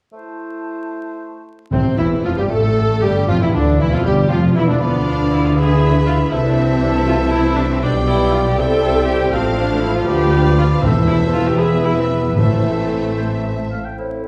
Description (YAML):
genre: quick classical-period movement for symphony orchestra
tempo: 78 BPM (dotted quarters)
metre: 6/8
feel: rubato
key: A minor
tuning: A4 = 440 Hz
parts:
  - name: dark clarinet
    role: second line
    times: 0.1-14.3 s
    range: C4 to C5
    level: -30 LUFS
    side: equal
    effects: none
  - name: mellow hollow silver concert flute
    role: second line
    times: 0.1-14.3 s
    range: C4 to B5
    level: -30 LUFS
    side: equal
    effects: none
  - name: warm oboe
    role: second line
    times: 0.1-14.3 s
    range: C4 to G5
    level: -32 LUFS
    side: equal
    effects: none
  - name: clear bassoon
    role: accompaniment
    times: 0.1-14.3 s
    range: A2 to A3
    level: -27 LUFS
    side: equal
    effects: none
  - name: rich studio violin section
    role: melody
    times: 1.7-13.7 s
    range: C4 to G5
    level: -32 LUFS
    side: equal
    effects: none
  - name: rich chamber violin section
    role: second line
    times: 1.7-13.8 s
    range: C4 to F5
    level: -32 LUFS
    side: equal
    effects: none
  - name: rich chamber viola section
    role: accompaniment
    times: 1.7-13.7 s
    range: A3 to A4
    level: -24 LUFS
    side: equal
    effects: none
  - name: mellow French horn section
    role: sustained chords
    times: 1.7-14.3 s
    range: C3 to G4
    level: -26 LUFS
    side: equal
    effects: none
  - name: rich studio double bass section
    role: bass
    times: 1.7-13.7 s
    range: E1 to D2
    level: -22 LUFS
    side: equal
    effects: none
  - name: warm symphonic cello section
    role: bass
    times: 1.7-13.7 s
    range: C2 to D3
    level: -23 LUFS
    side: equal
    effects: none
  - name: timpani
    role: percussion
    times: 1.7-4.0, 10.8-13.1 s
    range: E2 to A2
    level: -24 LUFS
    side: equal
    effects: none
room: wet recital hall reverb, RT60 1.6 s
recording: heard from further back in the room, vinyl crackle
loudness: -16 LUFS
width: mono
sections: 0.1-1.7 A section; 1.7-14.0 B section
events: none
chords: 0.1 Am; 1.7 Cadd11; 2.5 Gsus2; 3.3 Dm; 4.8 Bdim/D; 5.6 E7/D; 6.3 Am/C; 7.8 G/B; 8.6 C; 9.3 F/A; 10.1 Bdim/D; 10.8 Am/E; 11.6 E5; 12.4 Am